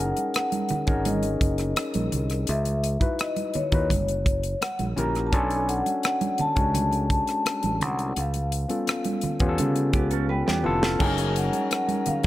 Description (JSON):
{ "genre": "lush 1970s-style soul", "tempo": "84 BPM", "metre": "4/4", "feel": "straight", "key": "unclear", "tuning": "A4 = 441 Hz", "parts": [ { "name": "vibraphone with soft mallets", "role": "melody", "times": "0.0-12.3 s", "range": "C#5 to A#5", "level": "-29 LUFS", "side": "left 1 dB", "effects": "tape echo" }, { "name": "overdriven tine electric piano", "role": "accompaniment", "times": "0.0-12.3 s", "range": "G#3 to B4", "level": "-28 LUFS", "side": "left 2 dB", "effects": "none" }, { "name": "fingered electric bass", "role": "bass", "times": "0.0-12.3 s", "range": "E#1 to C#3", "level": "-27 LUFS", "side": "equal", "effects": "none" }, { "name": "tight funk drum kit", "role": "drums", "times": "0.2-12.3 s", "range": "crash cymbal, hi-hat, kick drum, rim click, snare drum", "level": "-27 LUFS", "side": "equal", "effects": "none" }, { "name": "congas", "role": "percussion", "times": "0.2-12.2 s", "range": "none", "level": "-32 LUFS", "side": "right 4 dB", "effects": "none" }, { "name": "mellow electric guitar", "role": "riff", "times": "9.9-11.2 s", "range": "B3 to B4", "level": "-34 LUFS", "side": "right 7 dB", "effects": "phaser" }, { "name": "chamber organ, flutes", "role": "sustained chords", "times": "11.0-12.3 s", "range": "F#3 to A#4", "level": "-35 LUFS", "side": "equal", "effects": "none" } ], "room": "light reverb, studio reverb", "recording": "none", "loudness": "-22 LUFS", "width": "side -15 dB against mid", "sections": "0.0-11.0 A section; 11.0-12.3 A section", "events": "drum fill 10.3-11.0", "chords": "0.0 F#6; 2.5 C#m11; 3.9 F#7b9; 5.3 Bm9; 8.2 C#7alt; 11.0 F#6" }